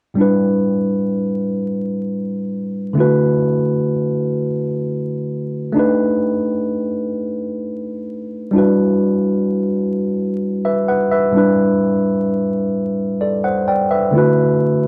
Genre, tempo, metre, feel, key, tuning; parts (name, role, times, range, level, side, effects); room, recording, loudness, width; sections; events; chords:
R&B; 43 BPM (dotted quarters); 6/8; straight; A dorian; A4 = 441 Hz
tine electric piano; solo; 0.1-14.9 s; A2 to G5; -18 LUFS; equal
moderate studio reverb, RT60 0.8 s; vinyl crackle; -18 LUFS; mono
0.2-14.9 A section
0.2 Am11; 3.0 D13; 5.8 B7alt; 8.5 Em7; 11.3 Am11; 14.1 D13